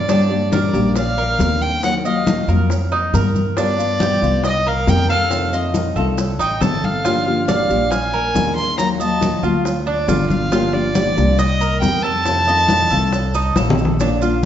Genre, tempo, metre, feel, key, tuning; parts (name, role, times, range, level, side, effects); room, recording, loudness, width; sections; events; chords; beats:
latin, Cuban son and guajira; 138 BPM; 4/4; straight; A4 = 440 Hz
warm violin; melody; 0.0-13.6 s; D5 to C6; -20 LUFS; equal
nylon-string guitar; accompaniment; 0.0-14.5 s; C3 to G4; -22 LUFS; left 3 dB
Cuban tres; arpeggios; 0.0-14.5 s; D4 to F5; -23 LUFS; right 3 dB
upright bass; bass; 0.0-14.5 s; G1 to G2; -21 LUFS; equal
bongos; percussion; 0.1-14.2 s; -27 LUFS; left 3 dB
congas; percussion; 0.1-14.4 s; -23 LUFS; left 2 dB
maracas; percussion; 0.1-14.4 s; -36 LUFS; right 6 dB
wet recital hall reverb, RT60 1.4 s; recorded in a church or concert hall, nothing above 7.6 kHz; -15 LUFS; side -10 dB against mid
0.1-14.0 A section
drum fill 13.6-14.0
0.1 Gm; 1.0 Bbadd9; 1.8 Ebmadd9; 2.7 F7sus4; 3.6 G7; 4.4 Cm7; 5.3 F7; 7.0 Gm7; 7.9 Bb7; 8.8 Ebmadd9; 9.7 Dm; 10.5 Gm7; 11.4 Cm7; 12.3 F7
| 0.09 0.53 0.96 1.40 | 1.83 2.27 2.70 3.14 | 3.57 4.01 4.44 4.88 | 5.31 5.75 6.18 6.62 | 7.05 7.48 7.92 8.35 | 8.79 9.22 9.65 10.09 | 10.52 10.96 11.39 11.83 | 12.26 12.70 13.13 13.56 | 14.00 14.43